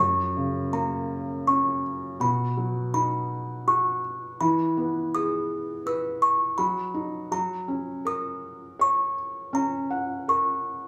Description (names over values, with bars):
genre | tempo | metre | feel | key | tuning
children's music, lullaby | 82 BPM | 3/4 | straight | unclear | A4 = 436 Hz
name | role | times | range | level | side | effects
music box | melody | 0.0-10.9 s | A#5 to E6 | -28 LUFS | equal | none
felt-muted upright piano | accompaniment | 0.0-10.9 s | F#2 to F#5 | -31 LUFS | equal | none
room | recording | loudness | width
moderate small room reverb, RT60 0.5 s | band playing live in one room, studio reverb | -26 LUFS | mono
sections
0.0-10.9 A section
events
none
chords
0.0 F#; 2.2 B; 4.4 E; 6.6 B/F#; 7.3 F#